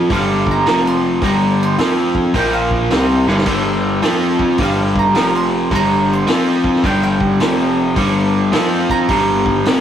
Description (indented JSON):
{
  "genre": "blues rock power trio and southern rock",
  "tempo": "107 BPM",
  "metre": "4/4",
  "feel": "swing 66% on 8ths",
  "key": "G minor",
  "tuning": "A4 = 440 Hz",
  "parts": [
    { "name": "overdriven electric guitar", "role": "riff", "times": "0.0-9.8 s", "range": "F2 to F4", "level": "-14 LUFS", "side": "left 1 dB", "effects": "none" },
    { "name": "growling picked electric bass", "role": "bass", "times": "0.0-9.8 s", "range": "F1 to F2", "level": "-24 LUFS", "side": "equal", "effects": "overdrive" },
    { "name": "bowl-back mandolin", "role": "second line", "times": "0.1-9.8 s", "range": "F5 to C6", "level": "-21 LUFS", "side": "right 4 dB", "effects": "none" },
    { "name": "vintage drum kit", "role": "drums", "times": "0.1-9.8 s", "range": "crash cymbal, hi-hat, kick drum, snare drum", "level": "-22 LUFS", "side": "right 1 dB", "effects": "none" }
  ],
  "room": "moderate small room reverb, RT60 0.5 s",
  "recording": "rough rehearsal-room recording",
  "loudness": "-13 LUFS",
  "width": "side -9 dB against mid",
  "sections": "0.0-9.8 A section",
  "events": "drum fill 3.2",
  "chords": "0.1 G5; 0.7 F5; 1.2 Gm; 1.8 F5; 2.4 Bb5; 2.9 G5; 4.0 F5; 4.6 G5; 5.2 F5; 5.7 Gm; 6.3 F5; 6.8 G5; 7.4 F5; 8.0 G5; 8.5 F5; 9.1 Gm"
}